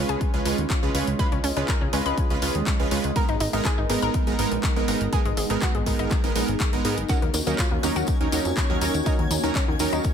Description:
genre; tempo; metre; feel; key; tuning
progressive house; 122 BPM; 4/4; straight; unclear; A4 = 440 Hz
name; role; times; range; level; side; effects
warm analog pad; sustained chords; 0.0-10.1 s; Ab3 to Eb5; -30 LUFS; right 1 dB; chorus, sidechain pumping
analog pluck; arpeggios; 0.0-10.1 s; Eb3 to Cb5; -30 LUFS; left 2 dB; chorus, sidechain pumping, ping-pong delay
supersaw stab; stabs; 0.0-10.1 s; Gb3 to Cb5; -27 LUFS; right 4 dB; sidechain pumping, ping-pong delay
plucky analog bass; bass; 0.0-10.0 s; Gb1 to Ab2; -28 LUFS; equal; sidechain pumping
pop drum kit; drums; 0.1-10.1 s; handclaps, hi-hat; -31 LUFS; left 2 dB; small room reverb
electronic kick drum; drums; 0.2-10.1 s; none; -25 LUFS; left 1 dB; small room reverb
tambourine; percussion; 7.1-10.1 s; none; -35 LUFS; left 6 dB; none
twinkling granular texture; texture; 7.8-10.1 s; Ab5 to Ab6; -37 LUFS; left 3 dB; built-in reverb, sidechain pumping
room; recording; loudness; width
light reverb; none; -21 LUFS; side -8 dB against mid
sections
0.0-10.1 A section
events
none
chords
0.0 Db7; 3.2 Abmadd9; 7.1 Ebm7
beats
0.21 0.70 | 1.19 1.68 2.18 2.67 | 3.16 3.65 4.14 4.63 | 5.13 5.62 6.11 6.60 | 7.09 7.59 8.08 8.57 | 9.06 9.55 10.04

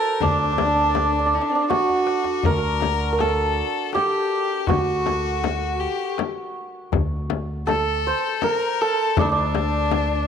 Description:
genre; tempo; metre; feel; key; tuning
Persian modal ensemble; 80 BPM; 3/4; straight; D dastgah homayun; A4 = 440 Hz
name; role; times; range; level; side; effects
santur; melody; 0.0-10.3 s; D4 to C5; -22 LUFS; right 4 dB; slapback echo
bright violin; second line; 0.0-10.3 s; C4 to Bb4; -26 LUFS; left 10 dB; slapback echo
upright bass; bass; 0.2-10.3 s; D2; -26 LUFS; equal; none
frame drum; percussion; 0.2-10.1 s; none; -26 LUFS; left 9 dB; none
tombak; percussion; 0.2-10.1 s; none; -28 LUFS; left 3 dB; none
room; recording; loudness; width
light reverb, small room ambience; 1960s-style stereo; -19 LUFS; side -7 dB against mid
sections
0.0-2.4 A section; 2.4-10.3 A section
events
drum fill 1.7-2.4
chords
none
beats
| 0.20 0.95 1.70 | 2.45 3.19 3.94 | 4.69 5.44 6.19 | 6.93 7.68 8.43 | 9.18 9.92

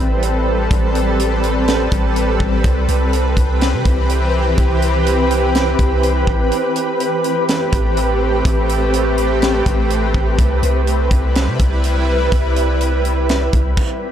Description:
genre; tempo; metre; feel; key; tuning
hip hop, atmospheric cloud-rap; 124 BPM; 4/4; half-time; unclear; A4 = 438 Hz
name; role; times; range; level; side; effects
shimmering ambient pad; sustained chords; 0.0-13.7 s; E3 to B4; -17 LUFS; equal; chorus, built-in reverb, sidechain pumping
long sustained 808-style bass; bass; 0.0-13.8 s; A1 to C3; -18 LUFS; equal; none
tight funk drum kit; drums; 0.2-13.9 s; crash cymbal, hi-hat, kick drum, snare drum; -19 LUFS; equal; none
room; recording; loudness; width
small room ambience; dry, gritty hardware recording; -14 LUFS; side -10 dB against mid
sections
0.0-14.1 A section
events
break 6.5-7.5; stop 13.8-14.1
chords
0.0 Am9; 10.4 Cmaj7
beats
0.22 | 0.71 1.19 1.68 2.16 | 2.64 3.13 3.61 4.09 | 4.58 5.06 5.55 6.03 | 6.51 7.00 7.48 7.97 | 8.45 8.93 9.42 9.90 | 10.39 10.87 11.35 11.84 | 12.32 12.80 13.29 13.77

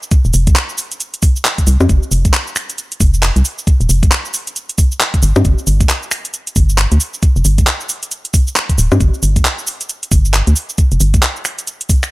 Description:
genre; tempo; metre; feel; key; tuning
UK garage, two-step garage; 135 BPM; 4/4; swing 60% on 16ths; unclear; A4 = 440 Hz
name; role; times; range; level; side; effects
garage drum kit; drums; 0.0-12.1 s; bongos, finger snaps, handclaps, hi-hat, shaker; -17 LUFS; equal; none
electronic kick drum; drums; 0.1-12.0 s; none; -12 LUFS; equal; none
organ-like FM bass; bass; 0.2-11.2 s; D1 to G2; -12 LUFS; equal; sidechain pumping
room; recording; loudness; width
little or no reverb; dry, gritty hardware recording; -12 LUFS; side -20 dB against mid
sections
0.0-12.1 A section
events
none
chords
none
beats
| 0.12 0.56 1.00 1.45 | 1.89 2.34 2.78 3.23 | 3.67 4.12 4.56 5.00 | 5.45 5.89 6.34 6.78 | 7.23 7.67 8.12 8.56 | 9.01 9.45 9.89 10.34 | 10.78 11.23 11.67

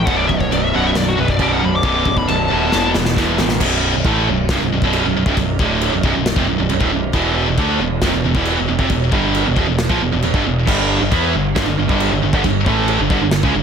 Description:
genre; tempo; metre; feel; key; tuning
heavy metal; 136 BPM; 4/4; straight; B minor; A4 = 440 Hz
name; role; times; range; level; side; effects
high-gain lead guitar; melody; 0.0-2.9 s; F#4 to D6; -20 LUFS; left 4 dB; distortion, tape echo
distorted electric guitar; riff; 0.0-3.6, 10.7-13.6 s; B1 to E4; -22 LUFS; equal; distortion
high-gain distorted guitar; riff; 0.0-13.6 s; B1 to E4; -20 LUFS; right 9 dB; distortion
scooped high-gain guitar; riff; 0.0-13.6 s; B1 to E4; -22 LUFS; left 12 dB; distortion
growling picked electric bass; bass; 0.0-13.6 s; B0 to E2; -22 LUFS; left 1 dB; overdrive
modern studio drum kit; drums; 0.1-13.5 s; china cymbal, crash cymbal, kick drum, snare drum; -20 LUFS; equal; none
room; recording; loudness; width
small room ambience; none; -14 LUFS; side -7 dB against mid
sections
0.0-3.6 A section; 3.6-13.6 B section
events
lead electric guitar solo 0.0-3.6; drum fill 2.7-3.6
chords
0.1 B5; 2.7 E5; 3.6 Bm; 7.1 E5; 10.7 G5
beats
| 0.08 0.52 0.96 1.40 | 1.84 2.29 2.73 3.17 | 3.61 4.05 4.50 4.94 | 5.38 5.82 6.26 6.70 | 7.15 7.59 8.03 8.47 | 8.91 9.35 9.80 10.24 | 10.68 11.12 11.56 12.00 | 12.44 12.88 13.33

